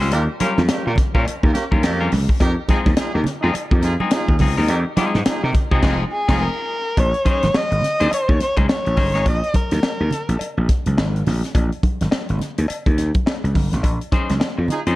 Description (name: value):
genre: funk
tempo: 105 BPM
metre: 4/4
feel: swing 60% on 16ths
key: Bb dorian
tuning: A4 = 435 Hz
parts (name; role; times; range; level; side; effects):
- semi-hollow electric guitar; accompaniment; 0.0-9.3, 14.1-15.0 s; G3 to Db5; -25 LUFS; left 4 dB; none
- gritty slap bass; bass; 0.0-15.0 s; F1 to C3; -20 LUFS; equal; overdrive
- tight funk drum kit; drums; 0.0-15.0 s; crash cymbal, hi-hat, kick drum, snare drum; -20 LUFS; equal; none
- warm horn section; second line; 0.1-6.4, 14.7-14.8 s; Bb3 to Bb4; -26 LUFS; right 2 dB; none
- congas; percussion; 0.1-14.8 s; none; -26 LUFS; right 2 dB; none
- cowbell; percussion; 0.1-14.6 s; none; -33 LUFS; left 2 dB; none
- dark erhu; melody; 6.1-10.4 s; Ab4 to Eb5; -22 LUFS; equal; none
room: light reverb, small room ambience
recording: dark, warm production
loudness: -16 LUFS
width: side -18 dB against mid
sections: 0.0-7.0 A section; 7.0-15.0 B section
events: band accent 5.8-7.0, 13.8-15.0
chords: 0.0 Eb9; 2.4 Fm7; 7.0 Bbm11